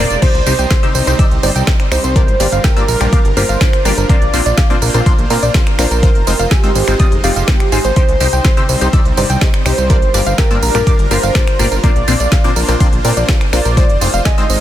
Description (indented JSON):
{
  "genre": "progressive house",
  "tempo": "124 BPM",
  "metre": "4/4",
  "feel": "straight",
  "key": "C minor",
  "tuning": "A4 = 440 Hz",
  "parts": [
    { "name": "warm velvety synth lead", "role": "melody", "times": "0.0-14.6 s", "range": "G4 to Eb5", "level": "-20 LUFS", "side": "right 1 dB", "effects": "chorus, ping-pong delay" },
    { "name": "supersaw pad", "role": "sustained chords", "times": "0.0-14.6 s", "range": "G3 to C5", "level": "-23 LUFS", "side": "right 2 dB", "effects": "sidechain pumping" },
    { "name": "soft round pluck", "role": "arpeggios", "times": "0.0-14.6 s", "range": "Bb4 to E6", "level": "-21 LUFS", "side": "equal", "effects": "chorus, vintage 12-bit sampler grit, sidechain pumping, tape echo" },
    { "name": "supersaw stab", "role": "stabs", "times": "0.0-14.4 s", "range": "G2 to F5", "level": "-20 LUFS", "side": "left 3 dB", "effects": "phaser, sidechain pumping, tape echo" },
    { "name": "fat analog bass", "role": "bass", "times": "0.0-14.6 s", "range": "F1 to Bb2", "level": "-16 LUFS", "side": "equal", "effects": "sidechain pumping" },
    { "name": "deep house drum kit", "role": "drums", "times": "0.1-14.6 s", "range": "crash cymbal, finger snaps, hi-hat, snare drum, tambourine", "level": "-20 LUFS", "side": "right 2 dB", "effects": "sidechain pumping on hats, sidechain pumping on perc, sidechain pumping on cymbals" },
    { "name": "electronic kick drum", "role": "drums", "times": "0.2-14.4 s", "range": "none", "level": "-12 LUFS", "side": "equal", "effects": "none" }
  ],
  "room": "light reverb",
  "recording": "dense, heavily limited modern master",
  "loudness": "-10 LUFS",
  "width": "side -12 dB against mid",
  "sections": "0.2-14.6 A section",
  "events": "drop 0.2-14.6",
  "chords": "0.2 Cm; 2.2 Gm7; 4.1 Bbadd9; 6.0 Fm7; 8.0 Cm; 9.9 Gm7; 11.8 Bbadd9; 13.8 Fm7"
}